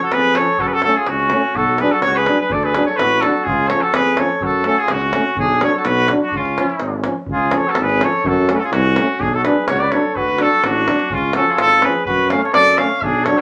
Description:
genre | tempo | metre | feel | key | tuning
balkan folk, Balkan brass band | 126 BPM | 2/4 | straight | C# phrygian dominant | A4 = 440 Hz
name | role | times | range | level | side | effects
clear trumpet | melody | 0.0-13.4 s | E#4 to E#5 | -19 LUFS | equal | none
mellow trumpet | second line | 0.0-13.4 s | C#4 to C#5 | -26 LUFS | equal | none
mellow tuba | bass | 0.1-13.3 s | G#1 to F#2 | -25 LUFS | equal | none
davul | percussion | 0.1-13.4 s | none | -27 LUFS | equal | none
dark euphonium | accompaniment | 0.4-13.4 s | E#3 to A3 | -30 LUFS | equal | none
warm trombone | accompaniment | 0.4-13.4 s | C#4 to D4 | -24 LUFS | equal | none
room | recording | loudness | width
wet small room reverb, RT60 0.5 s | vinyl crackle | -16 LUFS | mono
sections
0.0-7.3 A section; 7.3-13.4 A section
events
none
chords
0.0 C#; 0.6 F#m; 1.6 Bm; 2.5 D; 3.5 C#; 4.4 F#m; 5.4 Bm; 6.3 C#; 8.2 F#m; 9.2 Bm; 10.2 D; 11.1 C#; 12.1 F#m

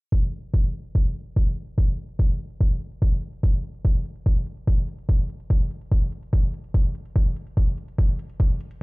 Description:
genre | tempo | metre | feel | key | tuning
psychedelic trance | 145 BPM | 4/4 | straight | none | none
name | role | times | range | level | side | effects
electronic hi-hat | drums | 0.1-8.8 s | none | -57 LUFS | right 2 dB | small room reverb
electronic kick drum | drums | 0.1-8.5 s | none | -20 LUFS | equal | small room reverb
room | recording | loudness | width
digital ambience | played on a big sound system in a bare room, stone room reverb, low-pass filter | -22 LUFS | side -27 dB against mid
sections
0.1-8.8 A section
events
filter sweep 0.1-8.8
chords
none

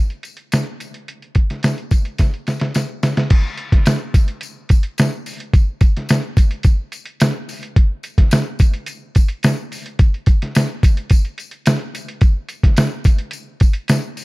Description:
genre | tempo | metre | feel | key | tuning
indie pop | 108 BPM | 4/4 | straight | none | none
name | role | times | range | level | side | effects
lo-fi sampler-style drum kit | drums | 0.1-14.2 s | crash cymbal, hi-hat, kick drum, snare drum | -14 LUFS | equal | overdrive
tambourine | percussion | 0.2-14.2 s | none | -35 LUFS | left 7 dB | none
room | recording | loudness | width
little or no reverb | dry, close 1970s-style studio recording | -15 LUFS | side -23 dB against mid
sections
0.0-3.3 A section; 3.3-14.2 B section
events
drum fill 2.2-3.3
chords
none

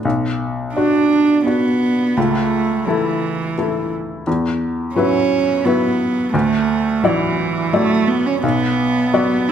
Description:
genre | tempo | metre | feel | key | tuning
neoclassical piano and strings | 86 BPM | 3/4 | rubato | B minor | A4 = 440 Hz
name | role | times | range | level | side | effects
felt-muted upright piano | accompaniment | 0.0-9.5 s | B1 to D5 | -19 LUFS | left 3 dB | none
warm cello | second line | 0.7-9.5 s | E3 to E4 | -17 LUFS | right 4 dB | none
room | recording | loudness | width
moderate large studio reverb, RT60 1.3 s | none | -15 LUFS | side -8 dB against mid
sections
0.0-9.5 A section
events
none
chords
0.0 Bm; 2.2 A/C#; 4.3 Esus2; 6.3 Dadd9; 8.4 Bm

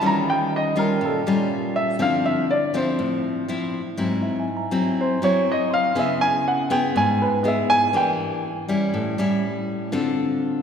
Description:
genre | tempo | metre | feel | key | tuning
bossa nova | 121 BPM | 4/4 | straight | unclear | A4 = 440 Hz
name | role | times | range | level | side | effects
warm baby grand piano | melody | 0.0-8.4 s | A4 to A#5 | -22 LUFS | right 1 dB | none
nylon-string guitar | accompaniment | 0.0-10.6 s | G#2 to A4 | -22 LUFS | left 2 dB | none
tine electric piano | accompaniment | 0.0-8.0 s | D#5 to B#5 | -34 LUFS | right 3 dB | medium stereo tremolo
room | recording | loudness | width
wet church reverb, RT60 2.7 s | recorded in a church or concert hall | -19 LUFS | side -7 dB against mid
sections
0.0-10.6 A section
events
grand piano solo 0.0-10.6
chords
0.0 D#9; 2.0 Dm9; 4.0 G#7b13; 6.0 C#m7; 7.9 Em7b5; 8.9 A7; 9.9 Dm7

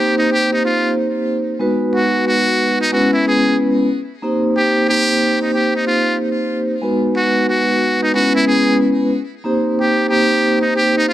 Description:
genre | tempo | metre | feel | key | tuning
hip hop | 92 BPM | 4/4 | swing 62% on 16ths | unclear | A4 = 440 Hz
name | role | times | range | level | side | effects
trumpet with metal mute | melody | 0.0-11.1 s | Eb4 to Ab4 | -18 LUFS | equal | digital delay
vibraphone with soft mallets | accompaniment | 0.0-11.1 s | Ab3 to C5 | -16 LUFS | equal | cassette tape
room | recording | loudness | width
moderate small room reverb, RT60 0.5 s | none | -14 LUFS | side -13 dB against mid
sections
0.0-11.1 A section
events
none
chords
0.0 Cm7; 1.6 Abm7; 2.9 Dbm7; 4.2 Cm7; 6.8 Abm7; 8.1 Dbm7; 9.5 Cm7

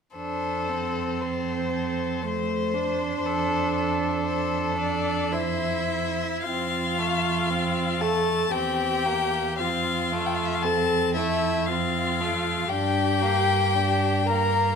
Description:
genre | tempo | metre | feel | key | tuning
classical, slow romantic movement for string quartet | 58 BPM | 3/4 | rubato | F major | A4 = 436 Hz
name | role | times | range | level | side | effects
clear violin | melody | 0.2-14.8 s | A4 to Bb5 | -27 LUFS | left 8 dB | none
clear violin | second line | 0.2-14.8 s | A3 to C5 | -30 LUFS | left 3 dB | none
clear viola | accompaniment | 0.2-14.8 s | A3 to Bb4 | -28 LUFS | right 3 dB | none
rich cello | bass | 0.2-14.8 s | E2 to G2 | -30 LUFS | right 5 dB | none
room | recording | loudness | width
wet recital hall reverb, RT60 1.4 s | minimal, uncompressed stereo recording | -23 LUFS | side -6 dB against mid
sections
0.2-6.4 A section; 6.4-14.8 B section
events
none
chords
0.2 F; 8.5 C7/E; 9.6 F; 12.7 Gm

